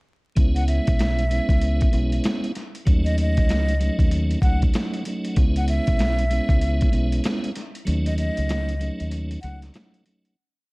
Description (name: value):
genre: hip hop, boom-bap hip-hop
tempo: 96 BPM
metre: 4/4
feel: swing 62% on 16ths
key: C# minor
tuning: A4 = 440 Hz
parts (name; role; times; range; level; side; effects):
- tonewheel organ; accompaniment; 0.4-10.4 s; F#3 to E4; -27 LUFS; right 1 dB; overdrive, chorus vibrato, cassette tape
- deep dub fingered electric bass; bass; 0.4-9.7 s; B1 to D#2; -22 LUFS; equal; none
- dusty soul sampler-style drum kit; drums; 0.4-10.4 s; hi-hat, kick drum, snare drum; -22 LUFS; equal; none
- breathy jazz flute; melody; 0.6-9.6 s; D#5 to F#5; -30 LUFS; equal; none
room: digital ambience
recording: dark, warm production, vinyl crackle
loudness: -19 LUFS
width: side -25 dB against mid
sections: 0.4-10.4 verse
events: break 7.9-10.4; fade-out 7.9-10.4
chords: 0.4 C#m7; 2.9 D#m7b5; 5.4 C#m7; 7.9 D#m7b5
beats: | 0.37 1.00 1.62 2.25 | 2.87 3.50 4.12 4.75 | 5.37 6.00 6.62 7.25 | 7.87 8.50 9.12 9.75